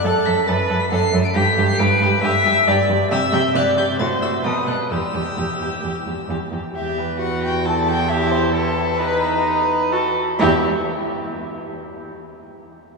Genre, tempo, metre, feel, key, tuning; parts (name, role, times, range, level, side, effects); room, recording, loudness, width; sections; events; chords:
quick classical-period movement for string quartet; 133 BPM; 4/4; uneven beats, rubato; E minor; A4 = 440 Hz
dark violin; melody; 0.0-10.7 s; B4 to D7; -23 LUFS; left 5 dB
dark violin; second line; 0.0-10.7 s; F#4 to B4; -25 LUFS; left 2 dB
rich viola; accompaniment; 0.0-10.7 s; D#4 to E5; -22 LUFS; right 1 dB
rich cello; bass; 0.0-10.7 s; E2 to C3; -22 LUFS; right 3 dB
wet cathedral reverb, RT60 5.2 s; studio ambience; -17 LUFS; side -3 dB against mid
0.0-6.8 A section; 6.8-10.4 B section; 10.4-12.3 C section
slowing down 5.8-10.4
0.0 D/F# (rootless); 1.4 G; 3.1 C; 4.0 F#dim; 4.4 B; 4.9 Em; 8.5 B7/E; 10.4 N.C.